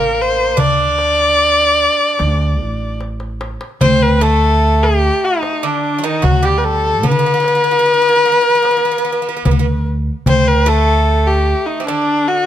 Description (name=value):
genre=Turkish makam ensemble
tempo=74 BPM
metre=4/4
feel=straight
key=D makam hicaz from 3.8 s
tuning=A4 = 440 Hz
part: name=clear kamancheh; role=melody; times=0.0-12.5 s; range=D4 to D5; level=-14 LUFS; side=left 2 dB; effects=none
part: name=Greek bouzouki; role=second line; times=0.0-12.5 s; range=C3 to D4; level=-22 LUFS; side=right 7 dB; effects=none
part: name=upright bass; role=bass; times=0.0-11.5 s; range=A1 to D3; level=-17 LUFS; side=equal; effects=none
part: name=darbuka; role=percussion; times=0.2-12.2 s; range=none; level=-20 LUFS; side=left 2 dB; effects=none
room=light reverb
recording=close, detailed microphones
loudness=-12 LUFS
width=side -11 dB against mid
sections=0.0-3.8 A section; 3.8-12.5 B section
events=drum fill 3.0-3.8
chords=none